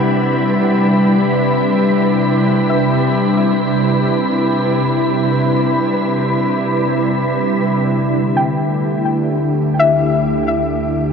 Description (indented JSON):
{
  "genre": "ambient",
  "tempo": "free time",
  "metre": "none",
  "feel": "none",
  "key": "unclear",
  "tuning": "A4 = 442 Hz",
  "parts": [
    { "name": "soft additive organ-like pad", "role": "sustained chords", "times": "0.0-11.1 s", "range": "C3 to G4", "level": "-14 LUFS", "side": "equal", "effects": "ensemble chorus, built-in reverb" },
    { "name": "soft round pluck", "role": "arpeggios", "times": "0.0-11.1 s", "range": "E5 to G5", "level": "-21 LUFS", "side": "left 4 dB", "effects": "chorus, ping-pong delay" },
    { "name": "wind-like tuned noise texture", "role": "texture", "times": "0.0-11.1 s", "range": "B4 to D6", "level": "-21 LUFS", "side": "right 2 dB", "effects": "built-in reverb" },
    { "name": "round analog bass", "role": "bass", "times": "7.9-11.1 s", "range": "D2", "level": "-33 LUFS", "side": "equal", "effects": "none" }
  ],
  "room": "wet huge ambient reverb, RT60 7.3 s",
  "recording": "none",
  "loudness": "-13 LUFS",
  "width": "side -6 dB against mid",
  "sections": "0.0-7.9 A section; 7.9-11.1 B section",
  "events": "filter sweep on ambient pad 7.9-11.1",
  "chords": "0.0 Cmaj7; 7.9 Dsus4",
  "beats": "free time"
}